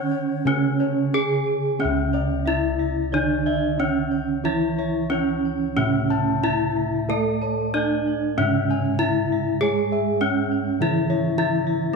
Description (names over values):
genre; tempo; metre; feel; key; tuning
Javanese gamelan; 86-107 BPM; 4/4; straight; C# pelog; A4 = 440 Hz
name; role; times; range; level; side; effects
gamelan-type bronze metallophone; melody; 0.0-12.0 s; C#4 to A4; -22 LUFS; right 1 dB; none
breathy bass bansuri; second line; 0.0-1.0 s; C#5; -36 LUFS; left 11 dB; none
gamelan-type bronze metallophone; accompaniment; 0.0-11.9 s; C#3 to A3; -28 LUFS; right 8 dB; none
gamelan-type bossed gongs; arpeggios; 0.0-11.7 s; C#5 to A5; -30 LUFS; left 13 dB; tape echo
gamelan-type bronze metallophone; arpeggios; 0.0-11.9 s; C#5 to A5; -32 LUFS; right 6 dB; none
gamelan-type bossed gongs; bass; 0.5-12.0 s; C#2 to A4; -28 LUFS; left 3 dB; none
room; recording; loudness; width
moderate echo chamber reverb, RT60 1.8 s, studio ambience; 1960s-style stereo with parts hard left and right; -20 LUFS; side -4 dB against mid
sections
0.0-1.8 A section; 1.8-11.9 B section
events
none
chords
none